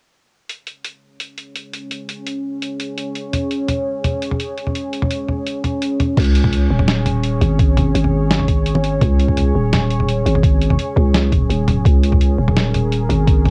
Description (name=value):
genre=half-time drum and bass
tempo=169 BPM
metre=4/4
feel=half-time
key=unclear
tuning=A4 = 439 Hz
part: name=deep dark ambient pad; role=sustained chords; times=1.8-13.5 s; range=C#4 to C#5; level=-25 LUFS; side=equal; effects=chorus, built-in reverb, sidechain pumping, cassette tape
part: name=boom bap sampler-style drum kit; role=drums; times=0.5-13.5 s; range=crash cymbal, hi-hat, snare drum, toms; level=-23 LUFS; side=equal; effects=cassette tape
part: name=growling 808-style bass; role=bass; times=6.2-13.5 s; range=D#1 to C#2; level=-19 LUFS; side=equal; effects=none
part: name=electronic kick drum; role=drums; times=6.2-13.3 s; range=none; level=-18 LUFS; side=equal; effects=cassette tape
room=light reverb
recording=home recording on cassette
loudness=-17 LUFS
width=mono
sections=0.5-6.2 A section; 6.2-13.5 B section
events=drop 6.2-13.5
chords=0.5 C#5